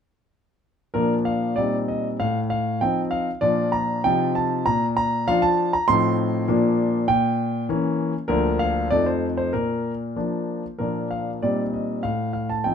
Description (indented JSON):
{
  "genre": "classical-period piano sonatina",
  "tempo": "97 BPM",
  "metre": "2/4",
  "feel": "rubato",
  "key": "Bb major",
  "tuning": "A4 = 440 Hz",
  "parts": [
    { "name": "clear grand piano", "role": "solo", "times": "0.9-12.7 s", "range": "D2 to C6", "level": "-20 LUFS", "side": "equal", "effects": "none" }
  ],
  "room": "light reverb",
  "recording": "minimal, uncompressed stereo recording",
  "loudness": "-20 LUFS",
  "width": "side -7 dB against mid",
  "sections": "0.9-10.8 A section; 10.8-12.7 A section",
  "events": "none",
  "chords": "0.9 Bb; 1.6 Cm7/Bb; 2.2 F7/A; 3.4 Bb; 4.0 F7/C; 4.7 Bb; 5.9 F7/A; 6.5 Bb; 7.1 Bbdim7; 8.3 Bb/D; 8.9 F7; 9.5 Bb; 11.4 Cm7/Bb; 12.0 F/A"
}